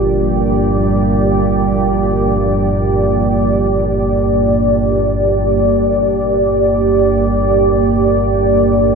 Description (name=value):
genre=ambient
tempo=free time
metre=none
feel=none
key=G minor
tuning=A4 = 437 Hz
part: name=deep dark ambient pad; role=sustained chords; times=0.0-8.9 s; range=Bb3 to D5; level=-13 LUFS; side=right 1 dB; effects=chorus, built-in reverb
part: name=quartz singing bowl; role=arpeggios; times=0.0-8.9 s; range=Bb2 to F4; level=-25 LUFS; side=left 1 dB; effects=ping-pong delay
part: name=deep rumbling drone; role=drone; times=0.0-8.9 s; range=G1 to G2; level=-18 LUFS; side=equal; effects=built-in reverb
room=wet huge ambient reverb, RT60 8.0 s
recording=none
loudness=-12 LUFS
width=side -5 dB against mid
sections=0.0-5.7 A section; 5.7-8.9 B section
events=none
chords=0.0 Gm